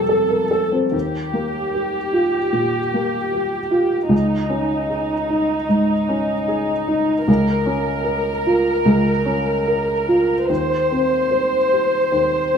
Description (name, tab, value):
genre	neoclassical piano and strings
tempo	75 BPM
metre	4/4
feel	rubato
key	unclear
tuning	A4 = 440 Hz
part	muted chamber violin section	melody	0.0-12.6 s	Eb4 to C5	-20 LUFS	equal	none
part	warm grand piano	accompaniment	0.0-12.6 s	Db2 to F5	-19 LUFS	equal	none
room	wet studio reverb, RT60 0.8 s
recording	band playing live in one room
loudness	-17 LUFS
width	side -7 dB against mid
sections	0.9-12.6 A section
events	none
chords	0.0 Fadd9; 0.9 Ebadd9; 4.1 Dbsus2; 7.3 Bbm/Db; 10.5 Cm/Eb